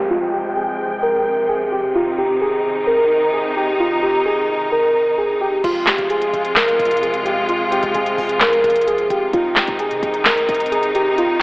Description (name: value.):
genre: hip hop, trap.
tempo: 130 BPM.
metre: 4/4.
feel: half-time.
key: F minor.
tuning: A4 = 440 Hz.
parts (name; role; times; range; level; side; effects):
muted felt-like synth keys; melody; 0.0-11.4 s; F4 to Bb4; -17 LUFS; equal; chorus, low-pass filter.
rich symphonic string section; sustained chords; 0.0-11.4 s; C3 to G5; -21 LUFS; left 1 dB; low-pass filter.
downlifter; sound effects; 0.0-1.9 s; none; -34 LUFS; equal; none.
short 808-style bass; bass; 5.6-11.0 s; F1 to C3; -33 LUFS; equal; none.
trap drum kit; drums; 5.6-11.3 s; crash cymbal, handclaps, hi-hat, snare drum; -18 LUFS; equal; none.
room: wet plate reverb, RT60 1.9 s.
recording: dreamy mix soaked in reverb, telephone sound.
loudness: -15 LUFS.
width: side -24 dB against mid.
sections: 0.0-5.6 A section; 5.6-11.4 B section.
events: filter sweep 0.0-5.6.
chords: 0.0 Fm; 1.9 Cm; 5.6 Fm; 9.3 Cm.